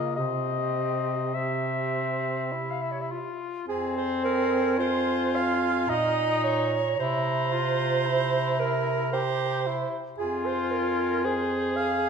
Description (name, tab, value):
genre	classical, lyrical piece for single-reed quartet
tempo	51-59 BPM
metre	3/4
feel	rubato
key	F minor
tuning	A4 = 440 Hz
part	clear clarinet	melody	0.0-12.1 s	Db5 to Bb5	-32 LUFS	left 6 dB	none
part	mellow alto saxophone	second line	0.0-12.1 s	F4 to F5	-28 LUFS	right 7 dB	none
part	warm tenor saxophone	accompaniment	0.0-12.1 s	Bb3 to Ab4	-30 LUFS	left 3 dB	none
part	warm bass clarinet	bass	0.0-12.1 s	F2 to Db3	-31 LUFS	right 1 dB	none
room	wet recital hall reverb, RT60 1.8 s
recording	minimal, uncompressed stereo recording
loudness	-24 LUFS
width	side -6 dB against mid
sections	0.0-3.7 A section; 3.7-12.1 B section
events	none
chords	0.2 C; 3.7 Fm; 5.9 Bbm; 7.0 C7; 10.2 Fm